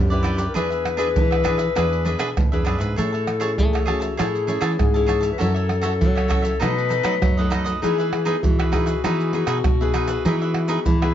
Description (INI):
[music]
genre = samba and choro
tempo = 99 BPM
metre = 4/4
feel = straight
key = E major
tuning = A4 = 442 Hz
[part]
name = mellow clarinet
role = second line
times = 0.0-11.1 s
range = E4 to B4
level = -25 LUFS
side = left 7 dB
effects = none
[part]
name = nylon-string guitar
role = accompaniment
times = 0.0-11.1 s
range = F#2 to B4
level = -28 LUFS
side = left 3 dB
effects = none
[part]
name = nylon-string guitar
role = bass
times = 0.0-11.1 s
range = D2 to A3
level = -24 LUFS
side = equal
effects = none
[part]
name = cavaquinho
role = accompaniment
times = 0.1-11.1 s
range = D4 to A5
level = -27 LUFS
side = right 4 dB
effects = none
[part]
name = maracas, pandeiro, tamborim and surdo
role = percussion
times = 0.1-11.1 s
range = none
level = -22 LUFS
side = right 2 dB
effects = none
[sound]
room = moderate studio reverb, RT60 0.6 s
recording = nothing above 7.5 kHz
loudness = -18 LUFS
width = side -10 dB against mid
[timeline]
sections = 0.0-11.1 A section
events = none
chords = 0.0 G6; 0.6 E7; 3.0 Amaj7; 5.4 F#m7; 6.6 B7; 7.8 Emaj7